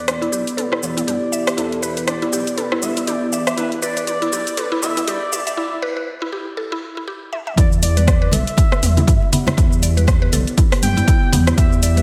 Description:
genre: afro house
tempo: 120 BPM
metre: 4/4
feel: swing 58% on 16ths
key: E minor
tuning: A4 = 439 Hz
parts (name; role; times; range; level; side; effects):
- expressive synth lead; melody; 0.0-12.0 s; A4 to G5; -28 LUFS; equal; chorus, delay
- dark analog pad; sustained chords; 0.0-12.0 s; B3 to D5; -28 LUFS; equal; chorus, phaser, sidechain pumping
- mallet-like synth pluck; arpeggios; 0.0-12.0 s; B3 to E5; -28 LUFS; equal; chorus, sidechain pumping, delay
- dark detuned saw bass; bass; 0.0-12.0 s; B1 to G2; -23 LUFS; equal; sidechain pumping, high-pass filter
- deep house drum kit; drums; 0.1-12.0 s; hi-hat, rim click, shaker, toms; -26 LUFS; equal; overdrive, high-pass filter on perc, high-pass filter on hats, high-pass filter on toms, high-pass filter on snare
- electronic kick drum; drums; 7.6-11.7 s; none; -18 LUFS; equal; overdrive
- congas; percussion; 7.8-12.0 s; none; -26 LUFS; equal; none
room: moderate lush hall reverb, RT60 2.1 s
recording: dreamy mix soaked in reverb, high-pass filter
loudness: -18 LUFS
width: mono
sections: 0.0-7.6 A section; 7.6-12.0 B section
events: build-up 0.0-7.6; drum fill 0.0-5.6, 7.3; filter sweep on synth pluck 0.0-7.6; break 5.6-7.6; drop 7.6-12.0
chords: 0.0 Em7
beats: 0.08 0.58 1.08 | 1.58 2.08 2.58 3.08 | 3.58 4.08 4.58 5.08 | 5.58 6.08 6.58 7.08 | 7.58 8.08 8.58 9.08 | 9.58 10.08 10.58 11.08 | 11.58

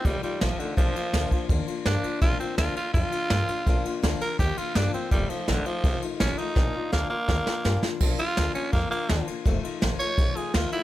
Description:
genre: rockabilly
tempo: 166 BPM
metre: 4/4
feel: straight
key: Bb major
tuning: A4 = 440 Hz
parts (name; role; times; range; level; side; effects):
- growling tenor saxophone; melody; 0.0-10.8 s; D3 to Db5; -29 LUFS; right 2 dB; none
- picked old ladder-braced acoustic guitar; accompaniment; 0.0-10.8 s; F2 to F4; -32 LUFS; left 6 dB; none
- upright bass; bass; 0.0-10.8 s; F1 to G2; -28 LUFS; equal; none
- jazz brush drum kit; drums; 0.0-10.8 s; crash cymbal, kick drum, ride cymbal, snare drum; -27 LUFS; equal; none
room: little or no reverb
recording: none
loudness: -23 LUFS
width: side -14 dB against mid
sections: 0.0-8.0 A section; 8.0-10.8 A section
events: tenor saxophone solo 0.0-10.8; drum fill 6.6-8.0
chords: 0.0 F7; 0.8 Bb; 5.1 F7; 6.6 Bb; 9.5 F7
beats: 0.05 0.41 | 0.77 1.14 1.50 1.86 | 2.22 2.58 2.95 3.31 | 3.67 4.03 4.39 4.76 | 5.12 5.48 5.84 6.20 | 6.56 6.93 7.29 7.65 | 8.01 8.37 8.73 9.10 | 9.46 9.82 10.18 10.54

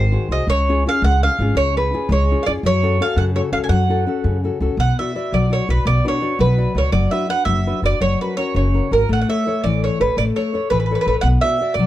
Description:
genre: italian folk, Italian serenade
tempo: 112 BPM (dotted quarters)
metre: 6/8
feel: rubato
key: F# harmonic minor, B minor from 4.8 s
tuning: A4 = 440 Hz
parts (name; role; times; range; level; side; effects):
- bowl-back mandolin; melody; 0.0-11.9 s; A#4 to G#5; -20 LUFS; right 2 dB; none
- nylon-string guitar; accompaniment; 0.0-11.9 s; C#3 to D5; -22 LUFS; left 4 dB; none
- upright bass; bass; 0.0-11.9 s; F#1 to F#2; -18 LUFS; equal; none
room: light reverb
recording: dark, warm production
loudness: -16 LUFS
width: side -14 dB against mid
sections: 0.0-4.8 A section; 4.8-11.9 B section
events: none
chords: 0.5 C#; 2.6 F#m; 4.8 Bm; 6.9 Bm/F#; 8.0 F#; 9.1 Aadd9; 11.2 Bm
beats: | 0.46 1.01 | 1.55 2.09 | 2.63 3.16 | 3.69 4.24 | 4.78 5.33 | 5.86 6.40 | 6.93 7.47 | 8.01 8.55 | 9.09 9.63 | 10.17 10.70 | 11.23 11.76

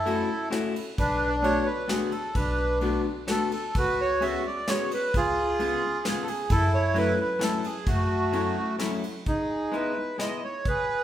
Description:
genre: musette waltz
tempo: 130 BPM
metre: 3/4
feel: straight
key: F# minor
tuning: A4 = 440 Hz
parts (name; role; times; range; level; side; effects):
- accordion; melody; 0.0-11.0 s; A3 to E5; -26 LUFS; right 1 dB; none
- upright bass; bass; 0.0-8.5 s; B1 to F#2; -31 LUFS; equal; none
- archtop guitar, miked and amplified; accompaniment; 0.1-10.4 s; F#3 to F#4; -31 LUFS; left 4 dB; none
- soft brush drum kit; drums; 0.1-10.8 s; hi-hat, kick drum, ride cymbal, snare drum; -32 LUFS; equal; none
room: wet recital hall reverb, RT60 1.4 s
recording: recorded in a church or concert hall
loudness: -24 LUFS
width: side -11 dB against mid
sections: 0.0-9.3 A section; 9.3-11.0 B section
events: none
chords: 0.0 F#m7; 1.0 Bm7; 3.8 C#7sus4; 5.1 C#7; 6.5 F#m7; 9.3 Emaj7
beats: 0.06 0.52 | 0.98 1.44 1.90 | 2.36 2.82 3.28 | 3.75 4.22 4.68 | 5.14 5.60 6.05 | 6.51 6.96 7.41 | 7.87 8.33 8.80 | 9.27 9.73 10.20 | 10.65

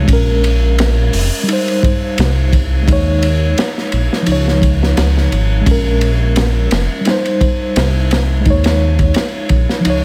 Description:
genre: trip hop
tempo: 86 BPM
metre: 4/4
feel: swing 55% on 16ths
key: unclear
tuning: A4 = 441 Hz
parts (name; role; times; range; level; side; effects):
- mellow tine electric piano; accompaniment; 0.0-10.0 s; F3 to Db5; -20 LUFS; equal; tremolo, tape echo
- dark detuned saw bass; bass; 0.0-10.0 s; F1 to Eb2; -16 LUFS; equal; tube saturation
- crunchy breakbeat drum kit; drums; 0.1-10.0 s; hi-hat, kick drum, ride cymbal, snare drum; -19 LUFS; equal; none
room: little or no reverb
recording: none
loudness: -14 LUFS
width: mono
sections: 0.0-10.0 A section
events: none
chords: 0.1 Bbm7; 1.5 Cm; 2.9 Eb7sus4; 4.3 Dbadd9; 5.7 Bbm7; 7.1 Cm; 8.5 Eb7sus4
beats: | 0.08 0.78 1.48 2.18 | 2.87 3.57 4.27 4.97 | 5.66 6.36 7.06 7.76 | 8.46 9.15 9.85

